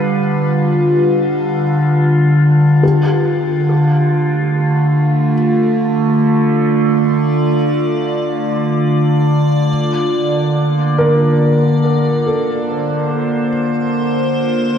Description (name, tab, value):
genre	ambient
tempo	free time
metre	none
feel	none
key	unclear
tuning	A4 = 443 Hz
part	evolving wavetable pad	sustained chords	0.0-14.8 s	D3 to D5	-12 LUFS	equal	phaser, built-in reverb
part	felt-muted upright piano	arpeggios	0.0-14.8 s	G4 to Bb4	-22 LUFS	equal	tape echo, shimmer reverb
room	wet cathedral reverb, RT60 5.9 s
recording	in a vast, echoing space, cassette tape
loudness	-12 LUFS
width	side -8 dB against mid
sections	0.0-14.8 A section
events	fade-out on felt piano 0.0-14.8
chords	0.0 G7; 2.8 Dm; 9.7 Bbadd9